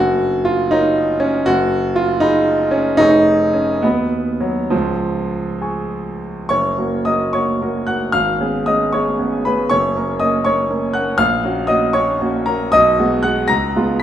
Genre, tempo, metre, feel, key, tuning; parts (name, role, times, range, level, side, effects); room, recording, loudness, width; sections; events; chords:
classical, romantic character piece for solo piano; 66-82 BPM (dotted quarters); 6/8; rubato; F# major; A4 = 442 Hz
warm concert grand piano; solo; 0.0-14.0 s; E#1 to B6; -14 LUFS; equal
wet recital hall reverb, RT60 1.3 s; minimal, uncompressed stereo recording; -14 LUFS; side -10 dB against mid
0.0-6.5 A section; 6.5-14.0 B section
0.0 F#; 1.5 G#m7/F#; 3.0 C#/E#; 3.8 B/D#; 4.7 C#; 6.5 F#; 8.1 C#7/G#; 9.7 F#; 11.2 F#/A#; 12.7 G#m7/B; 13.5 C#7